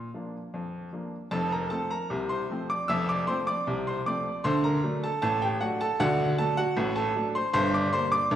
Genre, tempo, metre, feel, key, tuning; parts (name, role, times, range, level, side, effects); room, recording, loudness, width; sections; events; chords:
ragtime piano; 77 BPM; 2/4; straight; F major; A4 = 440 Hz
bright upright piano; solo; 0.0-8.4 s; F1 to E6; -25 LUFS; equal
wet recital hall reverb, RT60 1.7 s; recorded in a church or concert hall; -25 LUFS; side -10 dB against mid
0.0-1.3 A section; 1.3-8.4 B section
0.0 Bb; 1.3 F; 4.4 D7; 7.5 Gm